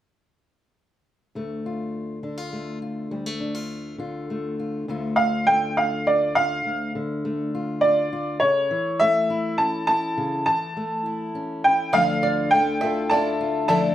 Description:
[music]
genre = folk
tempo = 102 BPM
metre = 3/4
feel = straight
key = D harmonic minor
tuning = A4 = 442 Hz
[part]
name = fingerpicked steel-string acoustic guitar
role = accompaniment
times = 1.4-13.9 s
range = D2 to F4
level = -28 LUFS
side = left 2 dB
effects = none
[part]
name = bright upright piano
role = melody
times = 5.2-13.9 s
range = C#5 to A5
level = -20 LUFS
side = right 1 dB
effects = plate reverb
[part]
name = picked twelve-string acoustic guitar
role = accompaniment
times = 11.9-13.9 s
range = D3 to A4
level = -24 LUFS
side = left 4 dB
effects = plate reverb
[part]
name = bluegrass banjo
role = arpeggios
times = 11.9-13.9 s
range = D5 to F5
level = -28 LUFS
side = right 7 dB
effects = plate reverb
[sound]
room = wet studio reverb, RT60 0.6 s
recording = rough home demo mix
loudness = -21 LUFS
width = side -12 dB against mid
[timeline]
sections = 1.4-4.9 A section; 4.9-13.9 B section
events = none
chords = 1.4 Dm; 8.4 A/C#; 11.9 Dmadd9

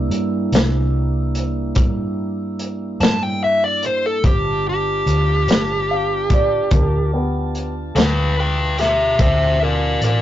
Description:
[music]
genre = slow blues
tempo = 48 BPM (dotted quarters)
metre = 12/8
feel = straight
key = G mixolydian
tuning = A4 = 440 Hz
[part]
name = mellow tonewheel organ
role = sustained chords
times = 0.0-10.2 s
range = G3 to A5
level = -27 LUFS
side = right 2 dB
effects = slow rotary speaker
[part]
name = vintage muted fingered electric bass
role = bass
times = 0.0-10.2 s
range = G1 to G2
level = -21 LUFS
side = equal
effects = none
[part]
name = crunchy breakbeat drum kit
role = drums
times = 0.1-10.2 s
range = hi-hat, kick drum, snare drum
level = -18 LUFS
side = equal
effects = none
[part]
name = smooth overdriven lead guitar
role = melody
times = 3.0-10.2 s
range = G4 to A5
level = -19 LUFS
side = left 1 dB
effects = none
[part]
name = dark upright piano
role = second line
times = 5.9-7.7 s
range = B3 to F5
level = -22 LUFS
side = right 1 dB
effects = none
[sound]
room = moderate booth ambience, RT60 0.2 s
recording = rough rehearsal-room recording, warm saturation, nothing above 7.6 kHz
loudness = -16 LUFS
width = side -12 dB against mid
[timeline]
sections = 0.0-10.2 A section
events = none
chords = 0.0 C7; 4.2 G7; 9.2 D7

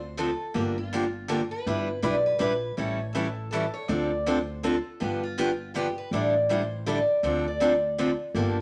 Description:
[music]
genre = acoustic string swing (jazz manouche)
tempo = 162 BPM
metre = 3/4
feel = swing 61% on 8ths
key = D minor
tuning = A4 = 440 Hz
[part]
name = picked steel-string acoustic guitar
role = melody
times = 0.0-8.6 s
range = F4 to D5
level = -31 LUFS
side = equal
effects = none
[part]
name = upright bass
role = bass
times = 0.0-8.6 s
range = G1 to D2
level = -35 LUFS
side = equal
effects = none
[part]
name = picked steel-string acoustic guitar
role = accompaniment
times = 0.2-8.6 s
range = D3 to B4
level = -30 LUFS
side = equal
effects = none
[sound]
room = moderate studio reverb, RT60 0.7 s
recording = none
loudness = -27 LUFS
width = mono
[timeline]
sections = 0.0-8.4 A section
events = none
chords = 0.0 Dm7; 0.6 Gm7; 1.7 Em7/G; 2.8 A7; 3.9 Dm7; 5.0 G7; 6.1 A7sus4; 7.2 Dm7

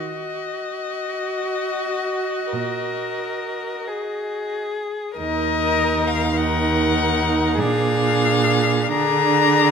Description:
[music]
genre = classical, slow romantic movement for string quartet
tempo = 43-51 BPM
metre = 4/4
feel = rubato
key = Eb minor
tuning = A4 = 445 Hz
[part]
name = warm violin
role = melody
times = 0.0-9.7 s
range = Eb5 to Bb5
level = -23 LUFS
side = left 9 dB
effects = none
[part]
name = clear viola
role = accompaniment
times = 0.0-9.7 s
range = D4 to Gb4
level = -25 LUFS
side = right 3 dB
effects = none
[part]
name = rich cello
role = bass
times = 0.0-9.7 s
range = Eb2 to Eb3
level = -23 LUFS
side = right 5 dB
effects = none
[part]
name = warm violin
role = second line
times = 1.2-9.7 s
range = Gb4 to Bb4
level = -25 LUFS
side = left 2 dB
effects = none
[sound]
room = moderate recital hall reverb, RT60 1.5 s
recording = none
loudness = -19 LUFS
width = side -6 dB against mid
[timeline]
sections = 0.0-5.2 A section; 5.2-9.7 A section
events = none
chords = 0.0 Ebm; 7.6 Bb7

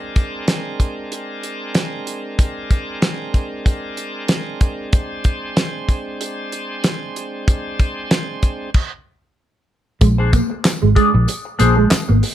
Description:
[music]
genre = funk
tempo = 94 BPM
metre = 4/4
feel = swing 56% on 16ths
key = Bb mixolydian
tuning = A4 = 440 Hz
[part]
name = bright tonewheel organ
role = sustained chords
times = 0.0-8.7 s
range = Ab3 to C5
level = -27 LUFS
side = right 1 dB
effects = slow rotary speaker, overdrive
[part]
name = damped 70s drum kit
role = drums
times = 0.2-12.3 s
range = crash cymbal, handclaps, hi-hat, kick drum, snare drum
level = -16 LUFS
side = equal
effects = none
[part]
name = clean electric guitar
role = accompaniment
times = 10.0-12.1 s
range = D4 to D5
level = -20 LUFS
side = left 4 dB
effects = wah, spring reverb
[part]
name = mellow electric guitar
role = riff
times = 10.0-12.3 s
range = Ab3 to Bb3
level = -19 LUFS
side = right 4 dB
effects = ensemble chorus
[part]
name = fingered electric bass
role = bass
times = 10.0-12.2 s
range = Ab1 to Bb1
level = -15 LUFS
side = equal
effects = none
[part]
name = tambourine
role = percussion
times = 10.0-12.3 s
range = none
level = -33 LUFS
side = left 5 dB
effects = none
[sound]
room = light reverb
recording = none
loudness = -17 LUFS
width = side -12 dB against mid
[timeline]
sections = 0.0-10.0 A section; 10.0-12.3 B section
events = stop 8.7-10.0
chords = 0.0 Bb9

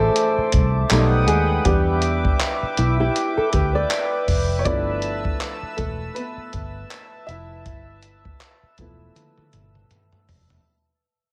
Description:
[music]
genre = contemporary R&B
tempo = 80 BPM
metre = 4/4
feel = swing 58% on 16ths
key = unclear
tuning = A4 = 440 Hz
[part]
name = warm grand piano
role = accompaniment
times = 0.0-10.7 s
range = E3 to E5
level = -27 LUFS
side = equal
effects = none
[part]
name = chorused pulse-width pad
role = sustained chords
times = 0.0-10.6 s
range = B4 to E6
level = -28 LUFS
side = equal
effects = sidechain pumping
[part]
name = vintage muted fingered electric bass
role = bass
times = 0.0-10.6 s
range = E1 to E2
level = -25 LUFS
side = equal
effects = none
[part]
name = dusty soul sampler-style drum kit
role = drums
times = 0.2-10.6 s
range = handclaps, hi-hat, kick drum, toms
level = -26 LUFS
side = equal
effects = none
[part]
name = flamenco guitar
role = arpeggios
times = 2.8-4.6 s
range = E4 to D5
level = -25 LUFS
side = equal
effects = none
[sound]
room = little or no reverb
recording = none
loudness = -21 LUFS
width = mono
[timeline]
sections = 0.0-10.7 A section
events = fade-out 0.0-10.7; grand piano solo 0.0-10.7; drum fill 9.2-10.7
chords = 0.0 C69; 0.9 B7b13; 1.7 Em7; 4.7 G13

